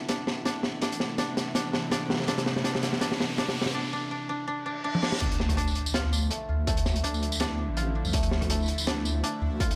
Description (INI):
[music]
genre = half-time drum and bass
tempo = 164 BPM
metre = 4/4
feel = swing 53% on 16ths, half-time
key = D minor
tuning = A4 = 440 Hz
[part]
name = bowed-like drone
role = sustained chords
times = 0.0-9.8 s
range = C3 to E4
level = -39 LUFS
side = equal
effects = built-in reverb, phaser, sidechain pumping
[part]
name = koto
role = arpeggios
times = 0.0-9.8 s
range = A3 to F4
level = -36 LUFS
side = equal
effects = low-pass filter, digital delay
[part]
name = deep soft wobble bass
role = bass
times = 0.0-9.8 s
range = A1 to D2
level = -32 LUFS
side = equal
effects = chorus, high-pass filter
[part]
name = riser, reverse cymbal and impact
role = sound effects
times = 1.7-6.7 s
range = none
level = -40 LUFS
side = equal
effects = none
[part]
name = crunchy breakbeat drum kit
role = drums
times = 0.1-9.8 s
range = crash cymbal, hi-hat, rim click, snare drum, tambourine, toms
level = -32 LUFS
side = equal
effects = none
[part]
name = electronic kick drum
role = drums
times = 0.1-9.7 s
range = none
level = -35 LUFS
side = equal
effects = distortion, high-pass filter on kick
[sound]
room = moderate echo chamber reverb, RT60 1.4 s, small room ambience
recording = none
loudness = -28 LUFS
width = mono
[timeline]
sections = 0.0-5.2 A section; 5.2-9.8 B section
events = build-up 0.0-5.2; drum fill 0.0-3.7, 4.9; riser 1.7-3.7; reverse cymbal 4.6-5.2; drop 5.2-9.8; impact 5.2-6.7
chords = 0.0 Am; 5.2 Dmadd9